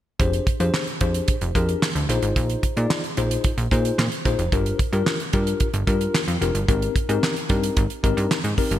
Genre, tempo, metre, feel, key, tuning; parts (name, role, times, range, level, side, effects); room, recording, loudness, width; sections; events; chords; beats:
early-eighties boogie funk; 111 BPM; 4/4; straight; F dorian; A4 = 440 Hz
tine electric piano; accompaniment; 0.2-8.7 s; C4 to D5; -25 LUFS; left 4 dB; medium stereo tremolo
plucky analog bass; bass; 0.2-8.8 s; F1 to Bb2; -23 LUFS; right 1 dB
damped 70s drum kit; drums; 0.2-8.8 s; handclaps, hi-hat, kick drum, snare drum; -23 LUFS; right 1 dB; gated reverb
light reverb; bright 1980s-style digital production; -20 LUFS; side -12 dB against mid
0.2-8.8 A section
0.2 Fm69; 2.1 Bb9sus4; 4.5 Gm7; 6.7 Abmaj9
| 0.20 0.74 1.28 1.82 | 2.36 2.90 3.44 3.98 | 4.52 5.06 5.60 6.14 | 6.68 7.22 7.76 8.30